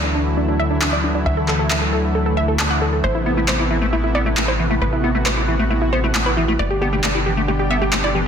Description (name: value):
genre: uplifting trance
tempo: 135 BPM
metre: 4/4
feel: straight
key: A dorian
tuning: A4 = 440 Hz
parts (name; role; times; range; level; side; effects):
- wide unison pluck; melody; 0.0-8.2 s; D4 to F#5; -23 LUFS; right 2 dB; dub echo
- lush unison pad; sustained chords; 0.0-8.3 s; B2 to G4; -22 LUFS; left 1 dB; chorus
- tight sequencer bass; bass; 0.0-8.3 s; G1 to D2; -22 LUFS; equal; none
- electronic handclaps; drums; 0.8-8.0 s; none; -22 LUFS; equal; none
- liquid acid bass; arpeggios; 3.0-8.2 s; E3 to E4; -24 LUFS; left 3 dB; wide subtle chorus, dub echo
room: light reverb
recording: dense, heavily limited modern master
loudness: -16 LUFS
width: side -7 dB against mid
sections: 0.0-8.3 A section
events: none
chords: 0.0 Dadd9; 3.0 Amadd9; 6.6 G